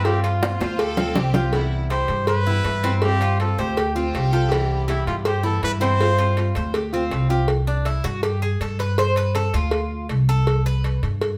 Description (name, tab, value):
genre	latin, Cuban son and guajira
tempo	161 BPM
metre	4/4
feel	straight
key	C major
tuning	A4 = 440 Hz
part	warm trumpet	melody	0.0-6.5 s	E4 to C5	-27 LUFS	equal	none
part	nylon-string guitar	accompaniment	0.0-7.5 s	C3 to F4	-30 LUFS	equal	none
part	Cuban tres	arpeggios	0.0-11.0 s	C4 to C5	-30 LUFS	equal	none
part	upright bass	bass	0.0-11.4 s	C2 to G2	-24 LUFS	equal	none
part	cowbell and bongos	percussion	0.1-11.4 s	none	-29 LUFS	equal	none
part	clear studio violin section	second line	0.6-4.8 s	E4 to A4	-32 LUFS	equal	none
room	wet studio reverb, RT60 0.7 s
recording	heard from further back in the room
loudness	-21 LUFS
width	mono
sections	0.0-7.5 A section; 7.5-11.4 B section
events	drum fill 0.4-1.5; Cuban tres solo 7.5-11.4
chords	0.1 G7sus4; 1.5 Cmaj7; 3.0 G7sus4; 4.5 Cmaj7; 6.0 G7sus4; 7.5 C5; 9.0 G7sus4; 10.5 C5